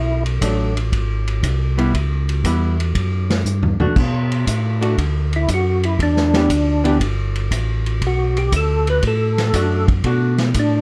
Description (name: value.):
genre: soul jazz organ trio.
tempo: 118 BPM.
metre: 4/4.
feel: swing 69% on 8ths.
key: B minor.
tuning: A4 = 440 Hz.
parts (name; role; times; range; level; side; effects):
percussive tonewheel organ; melody; 0.0-0.2, 5.4-10.8 s; D4 to B4; -22 LUFS; equal; slow rotary speaker, chorus vibrato.
mellow tonewheel organ; bass; 0.0-10.8 s; G1 to B2; -21 LUFS; equal; chorus vibrato, slow rotary speaker.
vintage drum kit; drums; 0.3-10.7 s; crash cymbal, hi-hat, kick drum, ride cymbal, snare drum, toms; -25 LUFS; equal; none.
archtop guitar, miked and amplified; accompaniment; 0.4-10.4 s; E3 to G4; -24 LUFS; equal; none.
room: little or no reverb.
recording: dark, warm production.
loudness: -18 LUFS.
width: mono.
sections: 0.0-4.0 A section; 4.0-10.8 B section.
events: drum fill 3.5-4.0; tonewheel organ solo 4.0-10.8.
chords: 0.0 Bm7; 0.9 G#; 1.9 C#m7b5; 3.0 Dadd11/F#; 4.0 Bm7; 6.0 Em7; 8.0 Bm7.